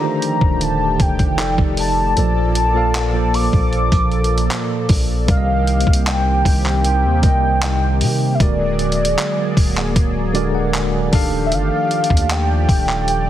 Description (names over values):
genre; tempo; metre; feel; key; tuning
contemporary R&B; 77 BPM; 4/4; straight; C dorian; A4 = 442 Hz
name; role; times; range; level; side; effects
warm velvety synth lead; melody; 0.0-13.3 s; D5 to D6; -21 LUFS; equal; chorus, tape echo
tine electric piano; accompaniment; 0.0-13.3 s; Bb2 to A5; -21 LUFS; equal; medium stereo tremolo
warm analog pad; sustained chords; 0.0-13.3 s; Eb3 to D5; -25 LUFS; right 1 dB; chorus
dusty soul sampler-style drum kit; drums; 0.2-13.3 s; handclaps, hi-hat, kick drum; -19 LUFS; equal; none
long sustained 808-style bass; bass; 0.4-13.3 s; D1 to C3; -20 LUFS; equal; none
room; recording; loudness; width
little or no reverb; heavily compressed radio sound, multiband compression; -14 LUFS; side -12 dB against mid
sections
0.0-5.3 A section; 5.3-13.3 B section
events
tine electric piano fill 10.0-11.5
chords
0.0 Ebmaj9#11; 1.4 F13; 2.2 Bbmaj7; 5.3 Cm7; 8.4 Bbaug7/D; 11.1 Ebmaj9#11